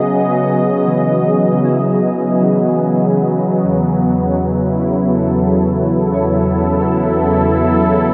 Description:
ambient; free time; A4 = 441 Hz
warm analog pad; sustained chords; 0.0-8.1 s; E2 to D#5; -15 LUFS; equal; chorus
mellow electric guitar; arpeggios; 0.0-8.1 s; C#3 to F#5; -25 LUFS; equal; ensemble chorus, tape echo
wet huge ambient reverb, RT60 7.3 s; dreamy mix soaked in reverb; -15 LUFS; mono
0.0-8.1 A section
0.0 Emaj7; 3.6 F#m/E

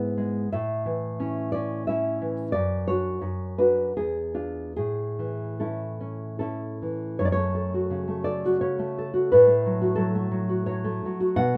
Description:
romantic piece for solo classical guitar; 69-90 BPM; 3/4; rubato; A major, F# minor from 7.2 s; A4 = 440 Hz
nylon-string guitar; solo; 0.0-11.6 s; E2 to F#5; -26 LUFS; equal
light reverb; -26 LUFS; mono
0.0-7.2 A section; 7.2-11.6 B section
0.5 A; 2.5 D/F#; 4.0 E7b9; 4.8 A; 7.2 F#m; 9.3 F#m/A

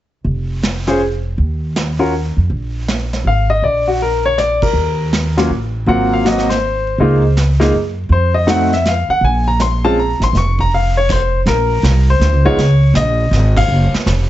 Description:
jazz piano trio; 161 BPM; 3/4; swing 65% on 8ths; Bb minor; A4 = 439 Hz
upright bass; bass; 0.2-14.3 s; F1 to Gb2; -15 LUFS; equal
vintage brush drum kit; drums; 0.3-14.3 s; brushed snare drum, crash cymbal, hi-hat, kick drum, ride cymbal, snare drum; -21 LUFS; right 2 dB
clear baby grand piano; melody; 0.9-13.9 s; Gb3 to Db6; -15 LUFS; left 2 dB
light reverb; heavily compressed radio sound, multiband compression, nothing above 7.9 kHz; -12 LUFS; side -13 dB against mid
0.3-2.5 A section; 2.5-11.5 B section; 11.5-14.3 C section
band accent 4.6, 13.5
0.3 N.C.; 2.5 Absus2; 3.6 Bb; 4.7 Eb5; 5.9 Ab13; 7.0 Db69; 8.1 F7b9; 9.2 Bbm; 11.5 N.C.; 12.6 Db5; 13.7 Gbmaj7(no3)

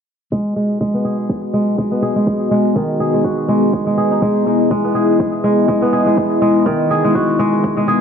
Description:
afro house; 123 BPM; 4/4; swing 56% on 16ths; G# minor; A4 = 440 Hz
warm analog pad; sustained chords; 0.3-8.0 s; B3 to D#5; -17 LUFS; left 2 dB; chorus, sidechain pumping
kora; arpeggios; 0.3-8.0 s; D#3 to G#4; -16 LUFS; right 1 dB; sidechain pumping, low-pass filter, ping-pong delay
electronic kick drum; drums; 0.3-7.7 s; -21 LUFS; right 1 dB; high-pass filter on kick, small room ambience
shaker; drums; 0.3-8.0 s; -52 LUFS; equal
moderate recital hall reverb, RT60 1.8 s, digital ambience; low-pass filter; -14 LUFS; side -7 dB against mid
0.3-8.0 A section
filter sweep on kora 0.3-8.0; filter sweep 0.3-8.0
0.3 G#m7; 4.2 Emaj7

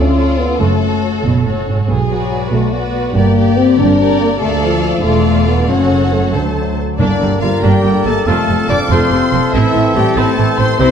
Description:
cinematic, heroic adventure film score; 94 BPM (dotted quarters); 6/8; straight; G dorian from 7.0 s; A4 = 435 Hz
warm symphonic violin section; melody; 0.0-10.9 s; C#5 to D6; -26 LUFS; left 4 dB
rich symphonic violin section; second line; 0.0-10.9 s; F4 to D6; -22 LUFS; left 3 dB
rich symphonic viola section; accompaniment; 0.0-10.9 s; C3 to D5; -22 LUFS; right 1 dB
dark French horn section; sustained chords; 0.0-10.9 s; D3 to D4; -16 LUFS; left 4 dB
dark symphonic cello section; bass; 0.0-10.9 s; D2 to C3; -18 LUFS; right 3 dB
dark symphonic double bass section; bass; 0.0-10.9 s; E1 to D2; -18 LUFS; right 4 dB
clear clarinet; second line; 7.0-10.9 s; D4 to D5; -19 LUFS; left 2 dB
warm trombone section; sustained chords; 7.0-10.9 s; D3 to C4; -23 LUFS; right 4 dB
clear trumpet section; stabs; 7.0-10.9 s; G4 to Bb4; -21 LUFS; equal
timpani; percussion; 7.0-7.6 s; G2; -21 LUFS; left 1 dB
warm oboe; second line; 7.6-10.9 s; C5 to F5; -23 LUFS; right 2 dB
wet scoring stage reverb, RT60 1.9 s; dark, warm production; -11 LUFS; side -8 dB against mid
0.0-7.0 A section; 7.0-10.9 B section
0.0 Dm; 0.6 F#m; 1.9 Bm; 3.2 Gm; 4.4 Dm; 5.7 F#m; 6.3 D7; 7.0 Gm; 8.3 F; 9.5 Am

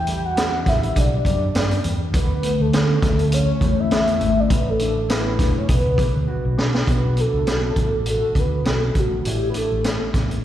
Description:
indie pop, bedroom pop; 101 BPM; 4/4; swing 55% on 16ths; B minor; A4 = 440 Hz
soft octave-layered synth lead; melody; 0.0-10.2 s; F#4 to G5; -24 LUFS; equal; tremolo, analog chorus, slapback echo, tape echo
mellow electric guitar; accompaniment; 0.0-10.4 s; A2 to F#4; -26 LUFS; left 4 dB; analog chorus, warbly pitch drift
fingered electric bass; bass; 0.0-10.4 s; E1 to D3; -22 LUFS; right 1 dB
raw garage drum kit; drums; 0.1-10.4 s; hi-hat, kick drum, snare drum; -22 LUFS; equal
light reverb, studio ambience; live gig heard through the venue's PA, recital hall reverb; -17 LUFS; side -12 dB against mid
0.0-6.9 A section; 6.9-10.4 B section
drum fill 6.3-6.9
0.0 Em9; 2.1 D5; 4.5 Asus4; 5.7 Bm; 6.9 Bm7; 9.0 Asus4

